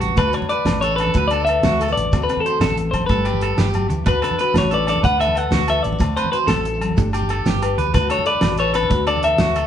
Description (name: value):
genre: highlife guitar band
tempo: 124 BPM (dotted quarters)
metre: 12/8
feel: straight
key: D major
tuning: A4 = 441 Hz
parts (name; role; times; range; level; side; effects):
- nylon-string guitar; accompaniment; 0.0-9.7 s; D3 to C5; -27 LUFS; left 6 dB; none
- electric guitar at the edge of break-up; arpeggios; 0.0-9.7 s; F#4 to C5; -24 LUFS; right 7 dB; spring reverb
- hollow-body short-scale fingered electric bass; bass; 0.0-9.7 s; G1 to D2; -24 LUFS; equal; none
- damped 70s drum kit; drums; 0.0-9.6 s; hi-hat, kick drum, snare drum; -23 LUFS; right 1 dB; none
- congas; percussion; 0.1-9.5 s; none; -26 LUFS; right 2 dB; none
- clean electric guitar; melody; 0.2-9.7 s; A4 to F#5; -20 LUFS; left 3 dB; none
- agogo bells; percussion; 0.2-9.7 s; none; -30 LUFS; left 4 dB; none
- shekere; percussion; 0.2-9.6 s; none; -28 LUFS; right 2 dB; none
room: moderate large studio reverb, RT60 1.0 s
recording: band playing live in one room, nothing above 10.4 kHz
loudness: -16 LUFS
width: side -9 dB against mid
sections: 0.0-9.7 A section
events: drum fill 3.4-4.1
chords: 0.2 D6; 2.1 D7; 3.1 G; 4.1 D6; 6.0 D7; 7.0 G; 7.9 D6